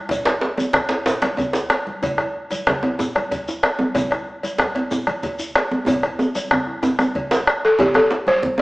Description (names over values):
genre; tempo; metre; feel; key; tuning
west african traditional, West African drum ensemble; 125 BPM (dotted quarters); 12/8; straight; unclear; A4 = 440 Hz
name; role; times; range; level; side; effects
bombo; percussion; 0.1-8.6 s; none; -22 LUFS; left 1 dB; none
congas; percussion; 0.1-8.6 s; none; -33 LUFS; equal; none
cowbell; percussion; 0.1-8.4 s; none; -27 LUFS; equal; none
djembe; percussion; 0.1-8.3 s; none; -31 LUFS; equal; none
shekere; percussion; 0.1-7.5 s; none; -36 LUFS; left 1 dB; none
djembe; percussion; 0.3-8.6 s; none; -21 LUFS; right 1 dB; none
balafon; melody; 7.6-8.6 s; G4 to C5; -15 LUFS; equal; none
room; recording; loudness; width
wet large studio reverb, RT60 1.1 s; band playing live in one room, small speaker sound; -18 LUFS; side -20 dB against mid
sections
0.0-7.8 A section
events
drum fill 5.9-7.8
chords
none